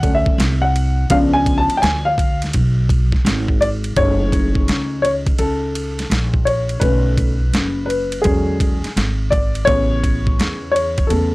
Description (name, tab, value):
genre	hip hop, jazz-hop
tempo	84 BPM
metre	4/4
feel	swing 65% on 16ths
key	unclear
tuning	A4 = 440 Hz
part	dark upright piano	accompaniment	0.0-11.3 s	C#3 to A5	-19 LUFS	left 1 dB	none
part	upright bass	bass	0.0-11.3 s	F#1 to E2	-19 LUFS	equal	none
part	boom bap sampler-style drum kit	drums	0.0-11.3 s	hi-hat, kick drum, ride cymbal, snare drum	-20 LUFS	equal	none
room	little or no reverb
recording	dry, gritty hardware recording, transformer saturation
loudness	-15 LUFS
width	side -21 dB against mid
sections	0.0-4.0 A section; 4.0-11.3 B section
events	upright piano solo 0.0-4.0, 4.0-11.3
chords	0.0 Bm9 (rootless); 1.1 C#7b9; 4.0 F#m69; 6.8 Bm7; 8.2 E13; 9.7 Amaj9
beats	0.39 | 1.10 1.82 2.53 3.25 | 3.96 4.67 5.39 6.10 | 6.82 7.53 8.25 8.96 | 9.68 10.39 11.10